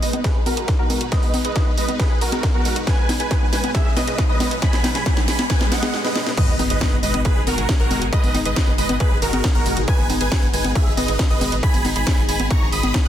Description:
uplifting trance; 137 BPM; 4/4; straight; G# minor; A4 = 440 Hz
dense compressed supersaw; melody; 0.0-13.1 s; F#4 to D#6; -25 LUFS; right 1 dB; sidechain pumping, low-pass filter, ping-pong delay
supersaw stab; second line; 0.0-13.1 s; A#4 to D#6; -31 LUFS; equal; sidechain pumping, low-pass filter, ping-pong delay
supersaw pad; sustained chords; 0.0-13.1 s; B2 to B4; -29 LUFS; equal; phaser, sidechain pumping
analog pluck; arpeggios; 0.0-13.1 s; G#3 to G#4; -31 LUFS; right 3 dB; chorus, cassette tape, sidechain pumping, ping-pong delay
tight sequencer bass; bass; 0.0-13.1 s; G#1 to G#2; -28 LUFS; equal
techno drum kit; drums; 0.0-13.0 s; congas, crash cymbal, hi-hat, snare drum; -24 LUFS; left 1 dB; overdrive
riser, swell and impact; sound effects; 0.0-8.1 s; -32 LUFS; right 1 dB
electronic kick drum; drums; 0.2-13.0 s; -19 LUFS; equal; distortion, overdrive
little or no reverb; dense, heavily limited modern master; -17 LUFS; side -10 dB against mid
0.0-6.4 A section; 6.4-13.1 B section
build-up 0.0-6.4; drum fill 0.0-5.9, 5.9-6.4; filter sweep on supersaw synth 0.0-6.4; filter sweep on synth pluck 0.0-6.4; swell 5.5-6.4; break 5.9-6.4; drop 6.4-13.1; impact 6.4-8.1
0.0 G#m
0.24 0.68 | 1.12 1.56 2.00 2.43 | 2.87 3.31 3.75 4.18 | 4.62 5.06 5.50 5.94 | 6.38 6.81 7.25 7.69 | 8.13 8.56 9.00 9.44 | 9.88 10.32 10.75 11.19 | 11.63 12.07 12.51 12.94

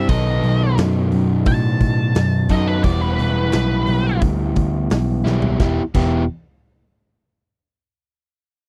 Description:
blues rock power trio and southern rock; 87 BPM; 4/4; straight; E minor; A4 = 439 Hz
octave-fuzz lead guitar; melody; 0.0-4.2 s; B4 to A5; -28 LUFS; equal; wah, distortion, slapback echo
crunchy overdriven guitar; riff; 0.0-6.2 s; B2 to A4; -22 LUFS; equal
vintage muted picked electric bass; bass; 0.0-6.3 s; E1 to A2; -22 LUFS; equal
big rock drum kit; drums; 0.1-6.1 s; crash cymbal, hi-hat, kick drum, snare drum, toms; -23 LUFS; equal
little or no reverb; dry, close 1970s-style studio recording; -18 LUFS; mono
0.0-5.6 A section; 5.6-8.4 B section
lead electric guitar solo 0.0-5.6; drum fill 5.3-5.6
0.1 B7; 2.9 Em7; 5.6 Em
| 0.09 0.78 1.47 2.16 | 2.85 3.54 4.23 4.92 | 5.61

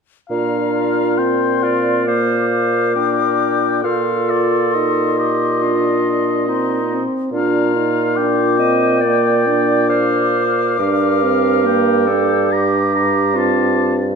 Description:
classical, slow romantic movement for wind quintet; 69 BPM; 4/4; rubato; Bb major; A4 = 442 Hz
mellow silver concert flute; melody; 0.3-13.9 s; Bb5 to D6; -22 LUFS; left 11 dB
clear oboe; second line; 0.3-13.9 s; D5 to Bb5; -24 LUFS; left 5 dB
bright clarinet; accompaniment; 0.3-13.9 s; Eb4 to Eb5; -20 LUFS; right 8 dB
clear French horn; accompaniment; 0.3-14.2 s; Bb3 to F4; -21 LUFS; equal
mellow bassoon; bass; 0.3-14.2 s; G2 to Bb2; -18 LUFS; equal
moderate scoring stage reverb, RT60 1.6 s; -14 LUFS; side -5 dB against mid
0.3-14.2 A section
0.3 Bb; 3.8 F7/Bb; 7.3 Bb; 10.8 Gm7
| 0.30 1.19 2.08 2.96 | 3.85 4.75 5.63 6.49 | 7.33 8.17 9.03 9.90 | 10.79 11.65 12.51 13.36

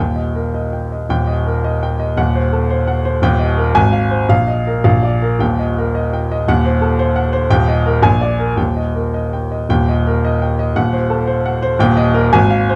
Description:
classical, virtuoso piano study; 102-119 BPM; 2/4; rubato; Eb major; A4 = 440 Hz
warm baby grand piano; solo; 0.0-12.8 s; Eb1 to Ab5; -16 LUFS; equal
light reverb; dark, warm production; -16 LUFS; mono
0.0-1.1 A section; 1.1-9.7 A section; 9.7-12.8 B section
0.0 Eb; 2.2 Ebdim7; 3.2 Eb; 3.7 Fm/Ab; 4.3 Bbsus4; 4.8 Bb; 5.4 Eb; 6.5 Ebdim7; 7.5 Eb; 8.0 Bb7; 8.6 Eb; 10.8 Ebdim7; 11.8 Eb
0.54 | 1.10 1.64 | 2.18 2.71 | 3.22 3.75 | 4.29 4.85 | 5.40 5.94 | 6.46 6.97 | 7.49 8.02 | 8.57 9.12 | 9.69 10.23 | 10.75 11.26 | 11.78 12.31

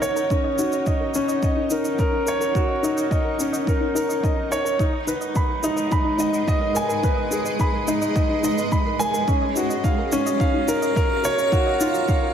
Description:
piano and strings electronica; 107 BPM; 4/4; straight; Eb minor; A4 = 440 Hz
granular cloud pad; sustained chords; 0.0-12.3 s; Ab3 to Bb5; -29 LUFS; right 2 dB; built-in reverb, sidechain pumping, shimmer reverb
soft round pluck; arpeggios; 0.0-12.3 s; Eb4 to Eb5; -29 LUFS; left 3 dB; chorus, sidechain pumping, tape echo, shimmer reverb
dark concert grand piano; riff; 0.0-12.3 s; Db4 to Cb6; -22 LUFS; equal; tape echo, shimmer reverb
electronic shaker and toms; drums; 0.0-12.2 s; -33 LUFS; equal; overdrive, high-pass filter on perc, high-pass filter on toms, high-pass filter on room
electronic kick drum; drums; 0.3-12.2 s; -23 LUFS; equal; overdrive
wet recital hall reverb, RT60 1.5 s, digital ambience; -19 LUFS; side -8 dB against mid
0.0-12.3 A section
build-up 0.0-12.3
0.0 Ebm7; 4.8 Abm; 9.3 Gbmaj7
| 0.31 0.87 1.43 2.00 | 2.56 3.12 3.68 4.24 | 4.80 5.36 5.92 6.48 | 7.04 7.60 8.16 8.72 | 9.29 9.85 10.41 10.97 | 11.53 12.09

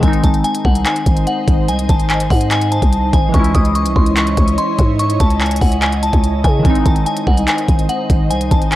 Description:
hip hop, trap; 145 BPM; 4/4; half-time; C# harmonic minor; A4 = 439 Hz
glassy synth bell; melody; 0.0-8.8 s; F#5 to D#6; -20 LUFS; left 1 dB; chorus, low-pass filter
glassy digital keys; accompaniment; 0.0-8.8 s; D#3 to E4; -22 LUFS; equal; chorus, low-pass filter
ethereal airy pad; sustained chords; 0.6-8.8 s; D#4 to D#5; -24 LUFS; right 1 dB; ensemble chorus, built-in reverb
growling 808-style bass; bass; 0.0-8.8 s; G#1 to C#3; -17 LUFS; equal
trap drum kit; drums; 0.0-8.8 s; handclaps, hi-hat, kick drum; -15 LUFS; equal
little or no reverb; dry, gritty hardware recording, transformer saturation, cassette tape; -12 LUFS; side -15 dB against mid
0.0-8.8 A section
0.0 G#; 3.3 C#m; 6.7 G#
| 0.03 0.44 0.86 1.27 | 1.68 2.10 2.51 2.93 | 3.34 3.75 4.17 4.58 | 5.00 5.41 5.82 6.24 | 6.65 7.06 7.48 7.89 | 8.30 8.72

